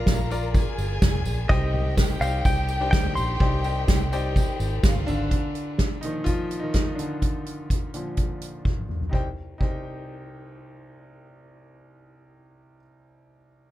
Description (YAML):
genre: piano-driven pop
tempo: 126 BPM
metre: 4/4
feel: straight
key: C minor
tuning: A4 = 440 Hz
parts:
  - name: direct-recorded clean electric guitar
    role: melody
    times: 0.0-5.0 s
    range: Eb5 to C6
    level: -29 LUFS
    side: left 1 dB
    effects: none
  - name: warm studio violin section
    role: second line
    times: 0.0-5.3 s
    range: F4 to Bb5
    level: -35 LUFS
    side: equal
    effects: ping-pong delay
  - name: clear concert grand piano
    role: accompaniment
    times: 0.0-13.7 s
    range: C2 to G5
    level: -31 LUFS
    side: left 1 dB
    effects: none
  - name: vintage muted fingered electric bass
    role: bass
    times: 0.0-5.3 s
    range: F1 to D2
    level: -27 LUFS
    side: equal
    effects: none
  - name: soft-mallet drum kit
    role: drums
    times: 0.1-9.7 s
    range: hi-hat, kick drum, ride cymbal, snare drum, toms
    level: -24 LUFS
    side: equal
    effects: none
  - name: tambourine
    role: percussion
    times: 0.1-5.2 s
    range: none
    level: -42 LUFS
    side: right 7 dB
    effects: none
room: little or no reverb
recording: none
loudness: -22 LUFS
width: side -14 dB against mid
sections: 0.0-5.3 A section; 5.3-9.1 B section; 9.1-12.9 C section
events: grand piano solo 5.3-9.1; drum fill 8.7-9.1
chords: 0.0 Bb; 1.5 Cmadd9; 5.3 Bb; 9.1 Cm